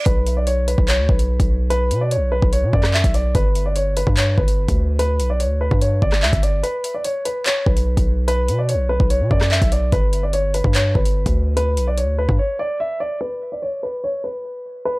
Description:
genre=hip hop, drill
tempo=146 BPM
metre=4/4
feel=half-time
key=unclear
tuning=A4 = 440 Hz
part: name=dark grand piano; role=melody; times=0.0-15.0 s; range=B4 to E5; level=-22 LUFS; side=equal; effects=low-pass filter
part: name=distorted 808-style bass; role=bass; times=0.1-12.4 s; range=G1 to B2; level=-19 LUFS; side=equal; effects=distortion
part: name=drill drum kit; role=drums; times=0.1-12.4 s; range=handclaps, hi-hat, kick drum, rim click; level=-19 LUFS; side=equal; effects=overdrive
room=digital ambience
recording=dry, gritty hardware recording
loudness=-16 LUFS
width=side -23 dB against mid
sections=0.1-13.2 A section; 13.2-15.0 B section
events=break 6.6-7.5, 12.4-13.2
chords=0.1 N.C.; 3.3 G; 6.6 B5; 9.9 G; 13.2 N.C.

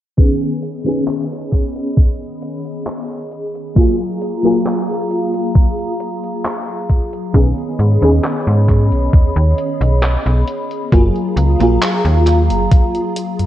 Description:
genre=vaporwave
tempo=67 BPM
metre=4/4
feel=straight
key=unclear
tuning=A4 = 439 Hz
part: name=FM electric piano with soft pad layer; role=accompaniment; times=0.2-13.5 s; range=D#3 to G#4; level=-18 LUFS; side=equal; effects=ensemble chorus, vintage 12-bit sampler grit, tape echo
part: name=warbly tape-like pad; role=sustained chords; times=1.0-13.5 s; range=G#4 to B5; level=-25 LUFS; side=equal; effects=chorus, built-in reverb
part: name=detuned 8-bit digital drum machine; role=drums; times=0.2-13.5 s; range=handclaps, hi-hat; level=-25 LUFS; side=equal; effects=studio reverb, gated reverb
part: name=electronic kick drum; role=drums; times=0.2-12.9 s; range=none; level=-11 LUFS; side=equal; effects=overdrive, studio reverb
part: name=slap-like FM bass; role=bass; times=7.3-13.5 s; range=F#1 to G#2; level=-13 LUFS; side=equal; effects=none
room=light reverb, digital ambience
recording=cassette tape, low-pass filter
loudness=-13 LUFS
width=side -12 dB against mid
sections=0.2-13.5 A section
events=filter sweep on ambient pad 0.2-13.5; filter sweep 0.2-13.5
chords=0.2 B69; 3.8 F#maj9; 7.3 B69; 10.9 F#maj9

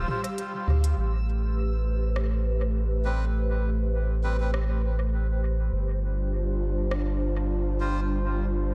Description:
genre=ambient dub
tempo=101 BPM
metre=4/4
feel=swing 54% on 16ths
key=A minor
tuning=A4 = 440 Hz
part: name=airy breathy pad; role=sustained chords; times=0.0-8.7 s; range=G3 to F5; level=-35 LUFS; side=equal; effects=chorus
part: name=soft dub sub bass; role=bass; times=0.0-8.7 s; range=G1 to D2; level=-28 LUFS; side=equal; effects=tube saturation
part: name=backwards swelling texture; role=texture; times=0.0-1.0 s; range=E6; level=-49 LUFS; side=equal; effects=built-in reverb
part: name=organic electronic drum kit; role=drums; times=0.1-7.0 s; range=hi-hat, rim click, toms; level=-41 LUFS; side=equal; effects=studio reverb, dub echo
part: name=melodica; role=stabs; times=3.0-8.0 s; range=G3 to C5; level=-40 LUFS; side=equal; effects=dub echo
room=light reverb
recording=none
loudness=-27 LUFS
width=mono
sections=1.0-8.7 A section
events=none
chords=0.0 G7(no3); 1.0 Am9; 5.7 G7sus4

